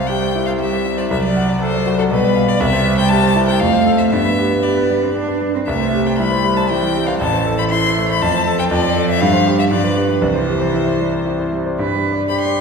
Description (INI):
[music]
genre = quick classical-period movement for piano trio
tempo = 118 BPM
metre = 3/4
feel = straight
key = C major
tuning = A4 = 442 Hz
[part]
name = rich violin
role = melody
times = 0.0-12.6 s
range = A4 to C6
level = -20 LUFS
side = left 5 dB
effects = none
[part]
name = warm cello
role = second line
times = 0.0-12.6 s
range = E3 to B4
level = -19 LUFS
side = right 4 dB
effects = none
[part]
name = clear concert grand piano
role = accompaniment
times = 0.0-12.6 s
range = A1 to F#5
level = -17 LUFS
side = equal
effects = none
[sound]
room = wet concert hall reverb, RT60 2.1 s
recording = heard from further back in the room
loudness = -14 LUFS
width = side -5 dB against mid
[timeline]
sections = 0.0-11.8 A section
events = none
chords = 0.0 C; 1.1 D7/C; 2.1 G7/B; 2.6 C; 3.6 F; 4.1 G; 5.7 C; 7.2 Am; 8.2 F; 8.7 Dm/F; 9.2 C5/G; 9.7 G7; 10.2 C; 11.8 G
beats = 0.09 0.60 | 1.11 1.61 2.11 | 2.60 3.10 3.60 | 4.12 4.64 5.16 | 5.67 6.19 6.70 | 7.21 7.71 8.22 | 8.71 9.21 9.71 | 10.22 10.74 11.26 | 11.78 12.29